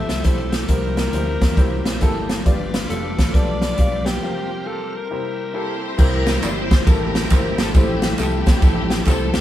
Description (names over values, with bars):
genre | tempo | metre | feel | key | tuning
uptempo gospel | 136 BPM | 4/4 | swing 64% on 8ths | unclear | A4 = 440 Hz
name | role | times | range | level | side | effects
clear alto saxophone | melody | 0.0-5.8 s | G4 to E5 | -27 LUFS | left 3 dB | none
warm upright piano | accompaniment | 0.0-9.4 s | G2 to F5 | -27 LUFS | left 2 dB | none
bright tonewheel organ | sustained chords | 0.0-9.4 s | G3 to G5 | -31 LUFS | equal | slow rotary speaker, chorus vibrato
fingered electric bass | bass | 0.0-9.4 s | F1 to E2 | -25 LUFS | equal | none
swinging big-band drum kit | drums | 0.1-9.4 s | crash cymbal, hi-hat, kick drum, ride cymbal, snare drum | -18 LUFS | equal | none
warm symphonic string section | melody | 5.6-9.4 s | C4 to C5 | -26 LUFS | left 2 dB | none
tambourine and handclaps | percussion | 6.0-9.4 s | none | -34 LUFS | right 2 dB | none
room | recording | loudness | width
light reverb | band playing live in one room | -17 LUFS | side -12 dB against mid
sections
0.0-6.0 A section; 6.0-9.4 B section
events
tonewheel organ fill 1.6-2.5; break 4.2-6.0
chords
0.0 Am7; 0.7 C7; 2.5 G7; 4.2 C7sus4; 5.1 C7; 7.7 Am7